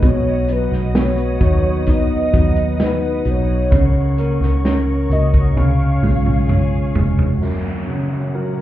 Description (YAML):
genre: pop ballad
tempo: 65 BPM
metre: 4/4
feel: straight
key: F# major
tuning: A4 = 440 Hz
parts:
  - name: warm velvety synth lead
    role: melody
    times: 0.0-8.6 s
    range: A#4 to E#5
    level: -24 LUFS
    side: left 1 dB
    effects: chorus
  - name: warm upright piano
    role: accompaniment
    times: 0.0-8.6 s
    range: F#2 to D#4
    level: -21 LUFS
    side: right 3 dB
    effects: none
  - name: warm studio string section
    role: sustained chords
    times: 0.0-8.6 s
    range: A#2 to D#6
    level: -31 LUFS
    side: left 3 dB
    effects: none
  - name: picked steel-string acoustic guitar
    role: arpeggios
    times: 0.0-7.7 s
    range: B2 to B4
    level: -26 LUFS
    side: left 6 dB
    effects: ping-pong delay
  - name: vintage muted fingered electric bass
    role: bass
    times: 0.0-7.4 s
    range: E#1 to D#2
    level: -18 LUFS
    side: equal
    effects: none
  - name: natural country drum kit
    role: drums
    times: 0.0-7.4 s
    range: hi-hat, kick drum, snare drum, toms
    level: -18 LUFS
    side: equal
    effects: none
  - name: downlifter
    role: sound effects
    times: 7.4-8.6 s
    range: none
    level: -29 LUFS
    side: left 1 dB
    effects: none
room: little or no reverb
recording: heard muffled through a wall, club reverb, EQ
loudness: -14 LUFS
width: side -13 dB against mid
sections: 0.0-7.4 A section; 7.4-8.6 B section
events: drum fill 5.6-7.4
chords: 0.0 B; 3.7 F#/C#; 5.6 C#; 7.4 F#